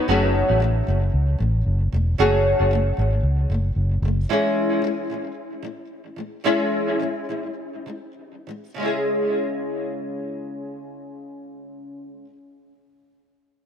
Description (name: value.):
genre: acoustic pop.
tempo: 97-114 BPM.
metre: 4/4.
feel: swing 55% on 16ths.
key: C# minor.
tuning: A4 = 443 Hz.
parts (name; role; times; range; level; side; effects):
nylon-string guitar; accompaniment; 0.0-12.4 s; C#3 to G#4; -23 LUFS; left 1 dB; double-tracked left and right, analog delay.
fingerpicked steel-string acoustic guitar; arpeggios; 0.0-0.6 s; F#3 to F#4; -34 LUFS; right 4 dB; none.
vintage muted fingered electric bass; bass; 0.1-4.2 s; E1 to C#2; -20 LUFS; equal; none.
room: light reverb.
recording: echo-heavy mix.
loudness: -19 LUFS.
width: side -8 dB against mid.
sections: 0.1-8.8 A section; 8.8-13.7 B section.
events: slowing down 4.3-8.8.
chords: 0.1 F#madd9; 4.3 C#m/E; 8.8 C#m.